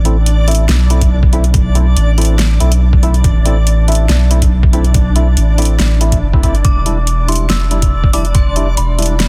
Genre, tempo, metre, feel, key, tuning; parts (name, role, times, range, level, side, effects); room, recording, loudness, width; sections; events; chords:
deep dubstep; 141 BPM; 4/4; swing 53% on 16ths, half-time; A4 = 439 Hz
soft dub sub bass; bass; 0.0-9.3 s; E1 to B1; -14 LUFS; equal
backwards swelling texture; texture; 0.0-9.3 s; D4 to D5; -27 LUFS; equal; built-in reverb
percussive organ stab; stabs; 0.1-9.2 s; G3 to E4; -24 LUFS; equal; subtle chorus, dub echo
deep house drum kit; drums; 0.1-9.3 s; hi-hat, snare drum; -21 LUFS; equal; overdrive
electronic kick drum; drums; 1.0-8.4 s; -15 LUFS; equal
dark detuned synth bell; melody; 6.6-9.3 s; B5 to E6; -25 LUFS; equal; chorus, phaser, dub echo
little or no reverb; dense, heavily limited modern master; -12 LUFS; mono
0.0-9.3 A section
0.0 Am; 6.6 Em7